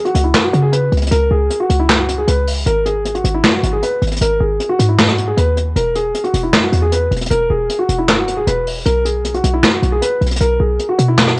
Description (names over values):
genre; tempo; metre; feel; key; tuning
hip hop, trap; 155 BPM; 4/4; half-time; C# dorian; A4 = 439 Hz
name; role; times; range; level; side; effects
dark concert grand piano; melody; 0.0-11.4 s; E4 to B4; -17 LUFS; equal; cassette tape
short 808-style bass; bass; 0.1-11.4 s; E1 to C#3; -16 LUFS; equal; none
vintage brush drum kit; drums; 0.1-11.4 s; handclaps, hi-hat, rim click, snare drum; -16 LUFS; equal; none
room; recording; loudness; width
light reverb, small room ambience; home recording on cassette, nothing above 10.5 kHz; -12 LUFS; side -24 dB against mid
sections
0.0-11.4 A section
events
none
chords
0.0 C#sus4; 2.7 G#5; 5.8 Eadd9; 8.9 B5